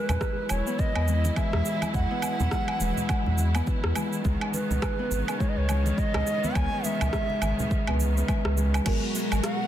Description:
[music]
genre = organic downtempo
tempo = 104 BPM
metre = 4/4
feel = swing 59% on 16ths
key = unclear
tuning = A4 = 439 Hz
[part]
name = bright reedy bass bansuri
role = melody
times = 0.0-9.7 s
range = B4 to G#5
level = -32 LUFS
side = right 2 dB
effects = ping-pong delay, shimmer reverb
[part]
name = bright studio string section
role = sustained chords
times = 0.0-9.7 s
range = B2 to A#4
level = -35 LUFS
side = right 1 dB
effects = sidechain pumping, shimmer reverb
[part]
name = Celtic harp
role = arpeggios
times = 0.0-9.7 s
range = G#3 to D#4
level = -31 LUFS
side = left 3 dB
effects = tape echo, shimmer reverb
[part]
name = warm sub bass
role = bass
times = 0.1-9.4 s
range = E1 to E2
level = -25 LUFS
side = equal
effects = sidechain pumping
[part]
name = deep house drum kit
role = drums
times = 0.1-9.6 s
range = cabasa, crash cymbal, hi-hat, rim click, woodblock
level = -33 LUFS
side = right 2 dB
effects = overdrive
[part]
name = congas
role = percussion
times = 0.1-8.7 s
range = none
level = -37 LUFS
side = right 2 dB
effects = none
[part]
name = electronic kick drum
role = drums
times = 0.2-9.0 s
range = none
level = -28 LUFS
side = equal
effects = overdrive
[part]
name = muted felt-like synth keys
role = accompaniment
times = 8.8-9.7 s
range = F#3 to A#4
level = -32 LUFS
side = right 6 dB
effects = chorus, phaser, sidechain pumping, tape echo, shimmer reverb
[sound]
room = light reverb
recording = dense, heavily limited modern master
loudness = -24 LUFS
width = side -11 dB against mid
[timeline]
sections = 0.0-8.9 A section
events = none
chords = 0.0 Emaj9; 4.2 C#m9; 8.9 G#m9

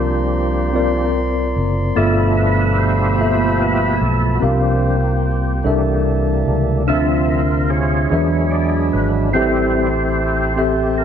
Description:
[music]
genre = gospel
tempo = 49 BPM (dotted quarters)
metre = 6/8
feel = straight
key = unclear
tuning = A4 = 435 Hz
[part]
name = mellow tine electric piano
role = accompaniment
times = 0.0-11.0 s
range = G2 to F5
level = -19 LUFS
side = left 2 dB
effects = medium stereo tremolo
[part]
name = mellow brass ensemble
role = sustained chords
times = 0.0-11.0 s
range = D4 to C6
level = -28 LUFS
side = right 1 dB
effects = none
[part]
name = percussive tonewheel organ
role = sustained chords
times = 0.0-11.0 s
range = B2 to E5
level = -20 LUFS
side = right 2 dB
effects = slow rotary speaker, overdrive, chorus vibrato
[part]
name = fingered electric bass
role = bass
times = 0.0-11.0 s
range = Gb1 to E2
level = -20 LUFS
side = equal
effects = none
[sound]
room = moderate echo chamber reverb, RT60 2.3 s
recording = dark, warm production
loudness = -14 LUFS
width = side -8 dB against mid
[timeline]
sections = 0.0-11.0 A section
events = tonewheel organ solo 0.0-11.0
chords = 0.0 C9sus4; 2.0 G13; 4.4 C7sus4; 5.7 C13; 6.9 Dm9; 8.1 E7; 9.3 Am7

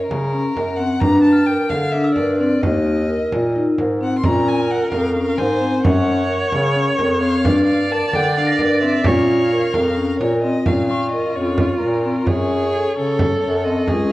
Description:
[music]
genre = contemporary instrumental, chamber music in an uneven meter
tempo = 261 BPM (eighths)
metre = 7/8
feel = straight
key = unclear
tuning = A4 = 439 Hz
[part]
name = warm violin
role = melody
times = 0.0-14.1 s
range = Bb4 to C6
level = -26 LUFS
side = left 3 dB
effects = none
[part]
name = vibraphone with medium mallets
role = arpeggios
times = 0.0-14.1 s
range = C4 to Bb4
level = -20 LUFS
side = left 1 dB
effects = none
[part]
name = warm bass clarinet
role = bass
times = 0.1-14.1 s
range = Db2 to D3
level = -20 LUFS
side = equal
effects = none
[part]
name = frame drum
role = percussion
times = 0.1-14.1 s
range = none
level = -23 LUFS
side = right 2 dB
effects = none
[part]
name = glockenspiel with soft plastic mallets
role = texture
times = 1.3-2.8, 8.5-12.5 s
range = Db6 to Bb6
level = -31 LUFS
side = equal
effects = none
[part]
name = rich viola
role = second line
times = 4.2-14.1 s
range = F4 to D5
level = -22 LUFS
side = right 2 dB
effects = none
[sound]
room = wet recital hall reverb, RT60 1.6 s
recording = worn, warbling old tape, cassette tape, warbly pitch drift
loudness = -15 LUFS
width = side -16 dB against mid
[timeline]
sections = 0.0-10.7 A section; 10.7-14.1 B section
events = none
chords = 0.0 Gb; 1.0 Gm7; 2.6 Eb5; 4.2 Bbmadd9; 5.8 Gb; 7.5 Gm; 9.1 Bbm; 12.3 Gbmadd9

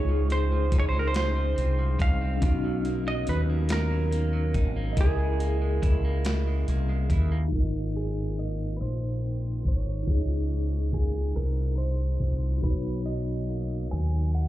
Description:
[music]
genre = slow six-eight R&B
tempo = 47 BPM (dotted quarters)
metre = 6/8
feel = straight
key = unclear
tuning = A4 = 440 Hz
[part]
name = semi-hollow electric guitar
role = melody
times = 0.0-14.5 s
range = Ab4 to Ab5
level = -35 LUFS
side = right 3 dB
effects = slapback echo
[part]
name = electric guitar at the edge of break-up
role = second line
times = 0.0-14.5 s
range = Ab2 to Fb4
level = -38 LUFS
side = right 4 dB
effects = slapback echo
[part]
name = mellow tine electric piano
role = accompaniment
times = 0.0-14.5 s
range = Ab3 to Eb5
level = -34 LUFS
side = equal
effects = medium stereo tremolo, slapback echo
[part]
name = mellow fretless electric bass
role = bass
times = 0.0-14.5 s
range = Ab1 to D#2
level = -26 LUFS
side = equal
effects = lush chorus
[part]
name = dusty soul sampler-style drum kit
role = drums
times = 0.3-14.5 s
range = hi-hat, kick drum, rim click, snare drum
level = -26 LUFS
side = equal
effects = none
[sound]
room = digital ambience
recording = live gig heard through the venue's PA, club reverb, low-pass filter, faint mains hum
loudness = -24 LUFS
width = side -14 dB against mid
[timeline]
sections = 0.0-7.5 A section; 7.5-14.5 B section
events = filter sweep 7.5-14.5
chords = 0.0 Dbmaj9; 2.4 Bmaj7; 5.0 Dbm6; 7.5 Ab69; 10.1 Dbmaj9; 12.6 Bmaj7

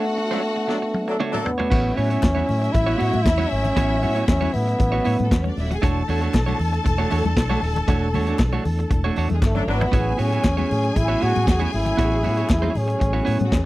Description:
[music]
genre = disco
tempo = 117 BPM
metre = 4/4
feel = straight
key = A major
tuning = A4 = 439 Hz
[part]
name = breathy trombone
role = melody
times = 0.0-5.6, 9.4-13.7 s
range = A3 to F#4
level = -24 LUFS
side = equal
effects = none
[part]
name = clear studio string section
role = second line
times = 0.0-13.7 s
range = F#3 to A5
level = -29 LUFS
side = left 2 dB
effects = none
[part]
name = clean electric guitar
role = accompaniment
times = 0.0-13.5 s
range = A3 to C#5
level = -26 LUFS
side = right 5 dB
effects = none
[part]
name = mellow tonewheel organ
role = sustained chords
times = 0.0-13.7 s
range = E3 to D4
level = -32 LUFS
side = equal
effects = none
[part]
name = warm horn section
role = stabs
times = 0.3-1.5, 9.6-9.8 s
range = F#3 to B4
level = -26 LUFS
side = left 1 dB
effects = none
[part]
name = vintage drum kit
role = drums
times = 0.7-13.6 s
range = crash cymbal, hi-hat, kick drum, snare drum, toms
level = -22 LUFS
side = equal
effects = none
[part]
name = vintage muted fingered electric bass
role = bass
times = 1.7-13.7 s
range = D#1 to A2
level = -23 LUFS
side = equal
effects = none
[part]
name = congas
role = percussion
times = 1.7-13.7 s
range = none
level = -31 LUFS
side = left 5 dB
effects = none
[part]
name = group handclap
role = percussion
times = 2.2-13.7 s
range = none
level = -37 LUFS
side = left 8 dB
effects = none
[sound]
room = light reverb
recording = dry, close 1970s-style studio recording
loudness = -18 LUFS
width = side -17 dB against mid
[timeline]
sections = 0.0-1.7 A section; 1.7-13.7 B section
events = break 0.0-1.7; band accent 0.0-1.7, 7.9-9.9; drum fill 0.7-1.7, 9.4-9.9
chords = 0.0 Bm9; 1.7 A69; 5.8 E13sus4; 9.9 A69

